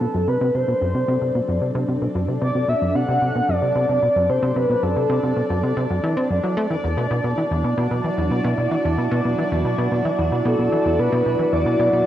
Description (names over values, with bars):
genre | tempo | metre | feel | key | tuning
ambient, sequencer-driven space music | 112 BPM | 4/4 | straight | unclear | A4 = 436 Hz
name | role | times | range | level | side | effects
breathy flute-like synth lead | melody | 0.0-5.9, 10.5-12.1 s | A4 to F#5 | -22 LUFS | equal | analog chorus, ping-pong delay
evolving wavetable pad | sustained chords | 0.0-12.1 s | F#3 to A4 | -28 LUFS | equal | chorus, built-in reverb, cassette tape
plucky analog bass | riff | 0.0-12.0 s | E2 to C4 | -22 LUFS | equal | cassette tape, ping-pong delay
bubbling stepped-filter texture | texture | 0.0-12.1 s | D4 to D5 | -26 LUFS | right 1 dB | chorus, built-in reverb, cassette tape
room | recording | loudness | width
wet spring reverb, RT60 2.0 s | home recording on cassette, nothing above 10.5 kHz | -18 LUFS | side -12 dB against mid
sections
0.0-12.1 A section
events
fade-in on ambient pad 0.0-12.1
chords
0.0 F#dim; 6.7 Esus2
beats
| 0.28 0.81 1.35 1.89 | 2.42 2.96 3.49 4.03 | 4.56 5.10 5.63 6.17 | 6.71 7.24 7.78 8.31 | 8.85 9.38 9.92 10.46 | 10.99 11.53